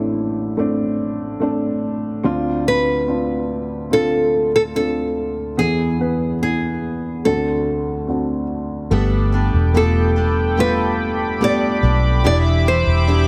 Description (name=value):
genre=pop ballad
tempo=72 BPM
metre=4/4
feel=straight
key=unclear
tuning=A4 = 440 Hz
part: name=nylon-string guitar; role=melody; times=0.0-13.3 s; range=E4 to D5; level=-23 LUFS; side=equal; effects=tape echo
part: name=dark upright piano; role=accompaniment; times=0.0-13.3 s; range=A1 to B4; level=-23 LUFS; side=equal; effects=none
part: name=chorused pulse-width pad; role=sustained chords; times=8.9-13.3 s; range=G4 to D6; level=-26 LUFS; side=equal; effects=none
part: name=picked steel-string acoustic guitar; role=arpeggios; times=8.9-13.3 s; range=E2 to A4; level=-29 LUFS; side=equal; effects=none
part: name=vintage muted fingered electric bass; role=bass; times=8.9-13.3 s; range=E1 to B1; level=-20 LUFS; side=equal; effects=none
room=light reverb, studio reverb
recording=none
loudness=-19 LUFS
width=mono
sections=0.0-8.9 A section; 8.9-13.3 B section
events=none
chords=0.0 Am; 2.2 Dm7; 5.6 E; 7.2 D7; 8.9 Gadd9; 12.2 Em7